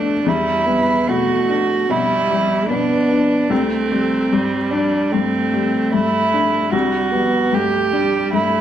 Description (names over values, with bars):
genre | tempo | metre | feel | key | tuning
neoclassical piano and strings | 74 BPM | 4/4 | rubato | unclear | A4 = 440 Hz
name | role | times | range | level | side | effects
warm cello | second line | 0.0-8.6 s | C4 to G4 | -18 LUFS | right 3 dB | none
dark viola | accompaniment | 0.0-8.6 s | G3 to B3 | -21 LUFS | equal | none
felt-muted upright piano | accompaniment | 0.0-8.6 s | C2 to D4 | -21 LUFS | left 5 dB | none
room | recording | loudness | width
moderate recital hall reverb, RT60 1.6 s | none | -15 LUFS | side -10 dB against mid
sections
0.0-8.6 A section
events
none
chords
0.0 Em7; 3.5 Csus2